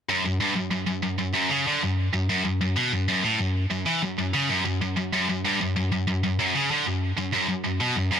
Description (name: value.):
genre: metal.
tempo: 95 BPM.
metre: 4/4.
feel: straight.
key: unclear.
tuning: A4 = 440 Hz.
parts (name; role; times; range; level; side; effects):
scooped high-gain guitar; solo; 0.1-8.2 s; F#2 to E3; -22 LUFS; equal; distortion, tape echo.
room: little or no reverb.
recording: none.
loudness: -22 LUFS.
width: side -8 dB against mid.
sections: 0.1-8.2 A section.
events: none.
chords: none.